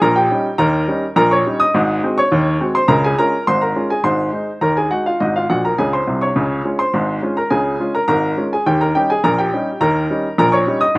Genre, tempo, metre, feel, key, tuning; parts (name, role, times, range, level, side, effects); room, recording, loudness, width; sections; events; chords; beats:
ragtime piano; 104 BPM; 2/4; straight; A4 = 440 Hz
bright upright piano; solo; 0.0-11.0 s; Ab1 to Eb6; -14 LUFS; equal
little or no reverb; recorded outdoors, with no room sound; -14 LUFS; side -24 dB against mid
0.0-11.0 A section
upright piano fill 5.5-6.4
0.0 Eb7; 1.7 Ab7; 2.9 Db; 4.0 Ab; 6.4 Db; 8.7 Eb7
0.01 | 0.59 1.16 | 1.74 2.31 | 2.88 3.46 | 4.04 4.62 | 5.20 5.77 | 6.35 6.93 | 7.51 8.09 | 8.66 9.23 | 9.81 10.38 | 10.96